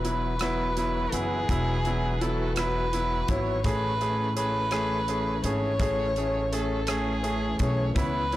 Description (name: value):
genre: six-eight pop ballad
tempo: 56 BPM (dotted quarters)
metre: 6/8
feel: straight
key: unclear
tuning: A4 = 440 Hz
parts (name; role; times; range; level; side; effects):
- warm violin; melody; 0.0-8.4 s; G#4 to C#5; -30 LUFS; equal; digital delay
- clear concert grand piano; accompaniment; 0.0-8.4 s; F#3 to G#4; -30 LUFS; right 1 dB; none
- bright tonewheel organ; sustained chords; 0.0-8.4 s; C#3 to B4; -34 LUFS; left 1 dB; chorus vibrato, slow rotary speaker
- upright bass; bass; 0.0-8.4 s; E1 to C#2; -30 LUFS; equal; none
- natural country drum kit; drums; 0.0-8.4 s; hi-hat, kick drum, rim click; -32 LUFS; equal; soft clipping on snare
room: light reverb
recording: blown-out, overdriven recording, overdrive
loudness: -24 LUFS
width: side -15 dB against mid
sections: 0.0-8.4 A section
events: none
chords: 0.0 Esus2; 3.6 Amaj7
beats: 0.41 | 1.49 2.57 | 3.65 4.72 | 5.80 6.88 | 7.97